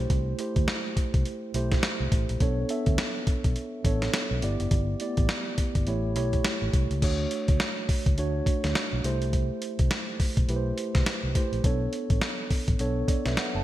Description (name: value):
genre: R&B, new jack swing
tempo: 104 BPM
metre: 4/4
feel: swing 60% on 16ths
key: unclear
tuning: A4 = 440 Hz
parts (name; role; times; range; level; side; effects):
- mellow tine electric piano; accompaniment; 0.0-13.6 s; A3 to A5; -30 LUFS; right 2 dB; medium stereo tremolo
- vintage muted fingered electric bass; bass; 0.0-13.6 s; F#1 to D2; -29 LUFS; equal; none
- boom bap sampler-style drum kit; drums; 0.1-13.5 s; crash cymbal, hi-hat, kick drum, snare drum; -26 LUFS; equal; gated reverb
room: light reverb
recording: bright 1980s-style digital production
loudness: -24 LUFS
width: side -14 dB against mid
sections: 0.0-7.0 A section; 7.0-13.6 B section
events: none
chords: 0.0 C6; 2.4 Bm9; 4.4 G6; 5.9 A7; 7.0 Dmaj7; 9.0 C6; 11.6 Bm9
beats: | 0.10 0.68 1.25 1.83 | 2.41 2.98 3.56 4.14 | 4.71 5.29 5.87 6.45 | 7.02 7.60 8.18 8.75 | 9.33 9.91 10.48 11.06 | 11.64 12.21 12.79 13.37